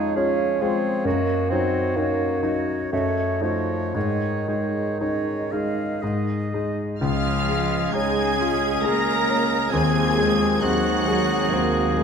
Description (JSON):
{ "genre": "classical, romantic movement for piano and orchestra", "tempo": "56-68 BPM", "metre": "3/4", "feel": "rubato", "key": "Db major", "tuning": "A4 = 439 Hz", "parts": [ { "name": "clear concert grand piano", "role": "melody", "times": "0.0-12.0 s", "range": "Db2 to Ab4", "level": "-24 LUFS", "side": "left 2 dB", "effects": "none" }, { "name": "bright clarinet", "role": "second line", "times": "0.0-12.0 s", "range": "C4 to Ab4", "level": "-34 LUFS", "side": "left 2 dB", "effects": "none" }, { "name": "mellow hollow silver concert flute", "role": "second line", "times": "0.0-11.9 s", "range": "Eb5 to Bb5", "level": "-33 LUFS", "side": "left 2 dB", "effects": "none" }, { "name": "warm oboe", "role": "second line", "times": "0.0-11.9 s", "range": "F4 to F5", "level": "-31 LUFS", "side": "right 2 dB", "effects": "none" }, { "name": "mellow bassoon", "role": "accompaniment", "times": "0.0-12.0 s", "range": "Eb3 to Eb4", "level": "-27 LUFS", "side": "right 3 dB", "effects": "none" }, { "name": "warm studio violin section", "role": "melody", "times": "7.0-12.0 s", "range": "F6 to Bb6", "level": "-30 LUFS", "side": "equal", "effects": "none" }, { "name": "rich studio violin section", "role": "second line", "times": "7.0-12.0 s", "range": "F5 to Bb5", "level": "-33 LUFS", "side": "left 3 dB", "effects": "none" }, { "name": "rich chamber viola section", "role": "accompaniment", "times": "7.0-11.9 s", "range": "F4 to Bb4", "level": "-31 LUFS", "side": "right 2 dB", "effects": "none" }, { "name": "mellow French horn section", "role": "sustained chords", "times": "7.0-12.0 s", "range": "C4 to Ab4", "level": "-32 LUFS", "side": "left 7 dB", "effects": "none" }, { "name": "warm trombone section", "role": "sustained chords", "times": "7.0-12.0 s", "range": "Db3 to Ab3", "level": "-31 LUFS", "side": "right 2 dB", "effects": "none" }, { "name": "warm trumpet", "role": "stabs", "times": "7.0-12.0 s", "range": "Ab4", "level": "-29 LUFS", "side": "equal", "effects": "none" }, { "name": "rich chamber double bass section", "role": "bass", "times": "7.0-12.0 s", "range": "Db2 to Eb2", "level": "-30 LUFS", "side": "right 2 dB", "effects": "none" }, { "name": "rich symphonic cello section", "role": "bass", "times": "7.0-12.0 s", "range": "F3 to Bb3", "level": "-30 LUFS", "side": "right 4 dB", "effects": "none" } ], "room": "moderate scoring stage reverb, RT60 1.9 s", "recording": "minimal, uncompressed stereo recording", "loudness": "-20 LUFS", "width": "side -6 dB against mid", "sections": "0.0-7.0 A section; 7.0-12.0 B section", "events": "none", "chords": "0.0 Db/F; 1.0 Ebm7/Gb; 2.9 Ebm7b5/Gb; 3.9 Absus4; 7.0 Db; 9.7 Ab7/Eb" }